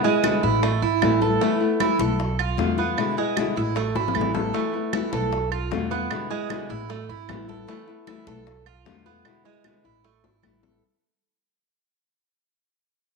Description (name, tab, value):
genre	latin, Cuban son and guajira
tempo	153 BPM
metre	4/4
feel	straight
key	unclear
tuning	A4 = 442 Hz
part	nylon-string guitar	accompaniment	0.0-10.8 s	B2 to F4	-27 LUFS	left 8 dB	none
part	Cuban tres	arpeggios	0.0-10.8 s	G#3 to A4	-25 LUFS	right 10 dB	none
part	bongos	percussion	0.0-10.7 s	none	-32 LUFS	left 8 dB	none
part	congas	percussion	0.0-10.8 s	none	-34 LUFS	left 10 dB	none
part	claves	percussion	0.2-10.6 s	none	-31 LUFS	right 12 dB	none
part	upright bass	bass	0.4-10.8 s	G#1 to E2	-28 LUFS	right 1 dB	none
room	wet echo chamber reverb, RT60 1.3 s, small room ambience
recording	1960s-style stereo with parts hard left and right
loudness	-21 LUFS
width	side -4 dB against mid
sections	0.0-10.8 A section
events	fade-out 0.0-10.8; drum fill 4.0-4.5, 10.2-10.8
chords	0.0 E7; 0.6 Asus2; 2.2 Bm7b5; 3.0 E7; 3.8 Asus2; 5.3 Bm7b5; 6.1 E7; 6.9 Asus2; 8.5 Bm7b5; 9.3 E7; 10.0 Asus2